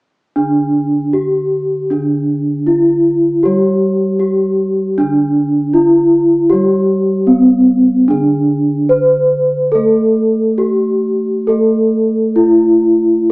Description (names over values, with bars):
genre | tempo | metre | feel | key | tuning
gamelan | 64-78 BPM | 4/4 | straight | D slendro | A4 = 439 Hz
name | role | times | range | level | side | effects
gamelan-type bronze metallophone | melody | 0.4-13.3 s | C4-40c to C5-40c | -11 LUFS | equal | none
gamelan-type bronze metallophone | accompaniment | 0.4-13.3 s | D3 to A3+20c | -18 LUFS | equal | none
room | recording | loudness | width
wet studio reverb, RT60 0.7 s | band playing live in one room, small speaker sound | -10 LUFS | side -25 dB against mid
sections
0.4-13.3 A section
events
none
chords
none